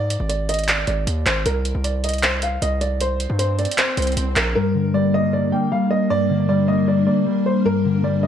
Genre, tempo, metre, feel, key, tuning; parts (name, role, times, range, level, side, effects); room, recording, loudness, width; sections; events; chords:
hip hop, trap; 155 BPM; 4/4; half-time; G phrygian; A4 = 439 Hz
dark baby grand piano; melody; 0.0-8.3 s; Bb4 to G5; -24 LUFS; right 2 dB
distorted 808-style bass; bass; 0.0-4.5 s; Ab1 to Ab2; -22 LUFS; equal; distortion
booming analog drum machine; drums; 0.1-4.5 s; handclaps, hi-hat; -22 LUFS; right 1 dB
swell; sound effects; 3.4-4.6 s; -31 LUFS; equal
mellow electric guitar; accompaniment; 4.6-8.3 s; G2 to Bb3; -18 LUFS; left 2 dB; phaser
hollow soft pad; sustained chords; 4.9-8.3 s; G3 to Bb4; -26 LUFS; left 1 dB; ensemble chorus
little or no reverb; -17 LUFS; side -9 dB against mid
0.0-4.6 A section; 4.6-8.3 B section
swell 3.4-4.6
0.0 Ab5; 1.5 C5; 4.6 Gm